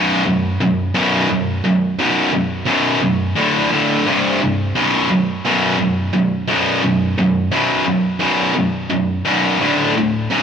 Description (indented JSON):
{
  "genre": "metal",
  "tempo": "87 BPM",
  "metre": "4/4",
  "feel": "straight",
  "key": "B phrygian",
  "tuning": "A4 = 438 Hz",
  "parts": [
    { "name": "tight distorted guitar", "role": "solo", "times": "0.0-10.4 s", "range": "B1 to D3", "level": "-14 LUFS", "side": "equal", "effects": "distortion, digital delay" }
  ],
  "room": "light reverb, digital ambience",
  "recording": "none",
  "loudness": "-14 LUFS",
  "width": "side -7 dB against mid",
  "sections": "0.0-10.4 A section",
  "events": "none",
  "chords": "0.0 B5; 3.4 D5; 4.1 C5; 4.7 B5; 9.6 D5"
}